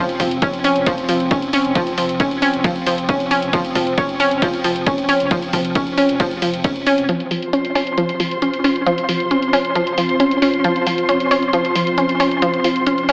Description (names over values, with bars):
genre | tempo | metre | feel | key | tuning
driving peak-time techno | 135 BPM | 4/4 | straight | unclear | A4 = 442 Hz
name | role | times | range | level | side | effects
analog pluck | riff | 0.0-13.1 s | F3 to Db4 | -20 LUFS | equal | chorus, sidechain pumping, analog delay
deep dark ambient pad | drone | 0.1-13.1 s | F3 to C4 | -27 LUFS | equal | chorus, built-in reverb, sidechain pumping
saturated sub bass | bass | 0.1-7.1 s | F1 | -40 LUFS | equal | overdrive, sidechain pumping, low-pass filter
punchy analog drum machine | drums | 0.1-13.1 s | hi-hat, ride cymbal | -28 LUFS | equal | sidechain pumping on hats, low-pass filter on hats, sidechain pumping on cymbals, low-pass filter on cymbals, low-pass filter on room
electronic kick drum | drums | 0.2-6.7 s | none | -24 LUFS | equal | none
dark chamber string section | texture | 7.1-13.1 s | F4 to C6 | -23 LUFS | equal | sidechain pumping
room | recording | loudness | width
moderate echo chamber reverb, RT60 1.3 s | echo-heavy mix, AM radio sound | -18 LUFS | mono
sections
0.0-7.1 A section; 7.1-13.1 B section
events
drop 0.0-7.1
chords
0.0 F5